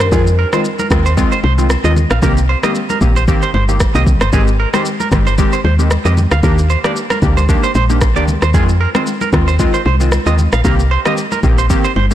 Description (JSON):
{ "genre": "afrobeats", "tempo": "114 BPM", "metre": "4/4", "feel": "swing 55% on 16ths", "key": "unclear", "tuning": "A4 = 439 Hz", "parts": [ { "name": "direct-recorded clean electric guitar", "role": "riff", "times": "0.0-12.0 s", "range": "Ab4 to F5", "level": "-20 LUFS", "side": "right 7 dB", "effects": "lush chorus, ping-pong delay" }, { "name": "afro-pop drum kit", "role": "drums", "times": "0.0-12.1 s", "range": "kick drum, rim click, shaker, toms", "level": "-17 LUFS", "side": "equal", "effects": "soft clipping on snare" }, { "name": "warm analog keys", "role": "accompaniment", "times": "0.1-12.1 s", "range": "Eb3 to G4", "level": "-19 LUFS", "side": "left 2 dB", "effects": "chorus" }, { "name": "woody FM bass", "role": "bass", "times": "0.1-12.1 s", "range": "G1 to F2", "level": "-13 LUFS", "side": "equal", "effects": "none" }, { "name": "congas", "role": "percussion", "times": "0.5-12.1 s", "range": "none", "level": "-24 LUFS", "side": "left 3 dB", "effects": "none" } ], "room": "light reverb", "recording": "blown-out, overdriven recording, overdrive", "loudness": "-11 LUFS", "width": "side -12 dB against mid", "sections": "0.1-12.1 A section", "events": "none", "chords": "0.1 Fm7; 2.2 Cm7; 4.3 Abmaj7; 6.4 Ebmaj7; 8.5 Fm7; 10.6 Cm7" }